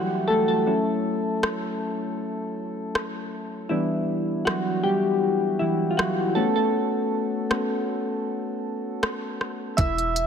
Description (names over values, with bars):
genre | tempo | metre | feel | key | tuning
contemporary R&B | 79 BPM | 4/4 | swing 54% on 16ths | unclear | A4 = 440 Hz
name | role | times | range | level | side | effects
soft electric-piano-like synth keys | accompaniment | 0.0-10.3 s | E3 to E5 | -23 LUFS | left 1 dB | chorus
smooth R&B drum kit | drums | 1.4-10.3 s | hi-hat, kick drum, rim click | -28 LUFS | equal | none
long sustained 808-style bass | bass | 9.8-10.3 s | E1 | -29 LUFS | equal | none
room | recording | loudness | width
light reverb | none | -23 LUFS | side -7 dB against mid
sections
0.0-10.3 A section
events
break 0.0-9.8; synth keys solo 0.0-10.3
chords
0.0 Em11; 0.7 F#m7; 3.7 Em9; 6.4 A69